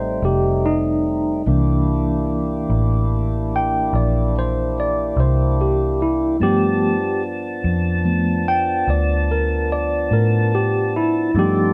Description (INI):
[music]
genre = slow blues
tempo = 49 BPM (dotted quarters)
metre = 12/8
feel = straight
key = C mixolydian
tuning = A4 = 437 Hz
[part]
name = tine electric piano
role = accompaniment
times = 0.0-11.7 s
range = E3 to G5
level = -22 LUFS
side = equal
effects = medium tremolo
[part]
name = tonewheel organ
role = sustained chords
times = 0.0-11.7 s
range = F3 to A5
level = -27 LUFS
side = equal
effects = slow rotary speaker
[part]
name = vintage muted fingered electric bass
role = bass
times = 0.0-11.7 s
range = F1 to A2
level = -23 LUFS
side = equal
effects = none
[sound]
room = moderate studio reverb, RT60 0.9 s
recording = band playing live in one room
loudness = -19 LUFS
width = mono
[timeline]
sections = 0.0-11.7 A section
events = tine electric piano solo 0.0-11.7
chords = 0.0 F9; 1.5 C9; 6.4 G9